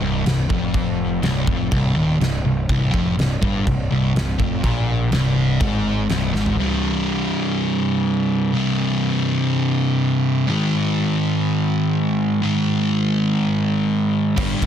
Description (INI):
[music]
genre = heavy metal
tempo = 123 BPM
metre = 4/4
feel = straight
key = C minor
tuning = A4 = 439 Hz
[part]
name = sludgy distorted guitar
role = riff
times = 0.0-14.7 s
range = C2 to Ab3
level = -18 LUFS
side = equal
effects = overdrive
[part]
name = fuzz picked electric bass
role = bass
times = 0.0-6.6, 14.4-14.7 s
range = C1 to Bb1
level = -25 LUFS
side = equal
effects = overdrive
[part]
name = big rock drum kit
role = drums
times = 0.3-6.6, 14.4-14.7 s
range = china cymbal, crash cymbal, kick drum, ride cymbal, snare drum, toms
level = -24 LUFS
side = equal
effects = none
[sound]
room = little or no reverb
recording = dense, heavily limited modern master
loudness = -17 LUFS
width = side -9 dB against mid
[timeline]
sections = 0.0-6.6 A section; 6.6-14.7 B section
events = drum fill 6.3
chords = 0.0 N.C.; 6.6 C5; 10.5 Ab5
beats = 0.25 | 0.74 1.23 1.72 2.20 | 2.69 3.18 3.66 4.15 | 4.64 5.12 5.61 6.10 | 6.58 7.07 7.56 8.05 | 8.53 9.02 9.51 9.99 | 10.48 10.97 11.46 11.95 | 12.43 12.92 13.41 13.90 | 14.38